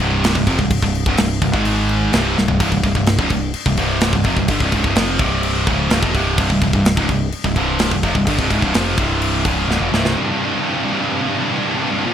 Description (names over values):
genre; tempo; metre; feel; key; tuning
heavy metal; 127 BPM; 4/4; straight; unclear; A4 = 443 Hz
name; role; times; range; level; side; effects
scooped high-gain guitar; riff; 0.0-12.1 s; C2 to Ab3; -17 LUFS; equal; distortion
growling picked electric bass; bass; 0.0-10.1 s; C1 to Ab1; -22 LUFS; equal; overdrive
tight metal drum kit; drums; 0.0-10.2 s; crash cymbal, kick drum, snare drum, toms; -20 LUFS; equal; none
room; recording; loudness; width
light reverb, studio reverb; bright 1980s-style digital production; -15 LUFS; side -9 dB against mid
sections
0.0-10.2 A section; 10.2-12.1 B section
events
drum fill 2.4, 9.7-10.2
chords
0.0 C5; 1.5 Ab5; 2.1 C5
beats
0.24 | 0.71 1.19 1.66 2.13 | 2.61 3.08 3.55 4.02 | 4.50 4.97 5.44 5.91 | 6.38 6.86 7.33 7.80 | 8.27 8.74 9.22 9.69 | 10.16 10.63 11.11 11.58 | 12.05